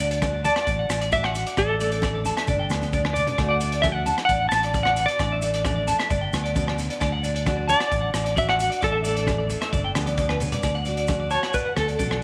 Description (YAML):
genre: highlife guitar band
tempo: 132 BPM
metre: 4/4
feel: straight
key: D major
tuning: A4 = 438 Hz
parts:
  - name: picked steel-string acoustic guitar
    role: accompaniment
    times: 0.0-12.2 s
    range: G2 to F#4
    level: -37 LUFS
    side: equal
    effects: none
  - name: clean electric guitar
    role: arpeggios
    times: 0.0-12.2 s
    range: B4 to A5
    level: -30 LUFS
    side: equal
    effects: lush chorus, tape echo
  - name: fingered electric bass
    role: bass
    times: 0.0-12.2 s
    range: G1 to D2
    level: -30 LUFS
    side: equal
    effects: none
  - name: maracas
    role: percussion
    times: 0.0-12.1 s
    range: none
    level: -43 LUFS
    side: equal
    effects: none
  - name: crunchy breakbeat drum kit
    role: drums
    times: 0.1-12.2 s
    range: hi-hat, kick drum, rim click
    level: -32 LUFS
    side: equal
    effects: none
  - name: agogo bells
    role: percussion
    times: 0.2-12.2 s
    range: none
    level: -40 LUFS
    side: equal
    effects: none
  - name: congas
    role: percussion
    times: 0.2-12.1 s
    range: none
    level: -35 LUFS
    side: equal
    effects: none
  - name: clean electric guitar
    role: melody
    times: 0.5-12.2 s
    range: A4 to A5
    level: -26 LUFS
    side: equal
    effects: tremolo
room: moderate echo chamber reverb, RT60 1.6 s, studio ambience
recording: none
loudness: -23 LUFS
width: mono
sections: 0.0-10.6 A section; 10.6-12.2 B section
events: drum fill 2.8-3.4, 10.1-10.6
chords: 0.0 D; 1.6 Asus4; 2.5 G; 3.4 D; 5.2 Asus4; 6.1 G; 7.0 D; 8.8 Asus4; 9.7 G; 10.6 D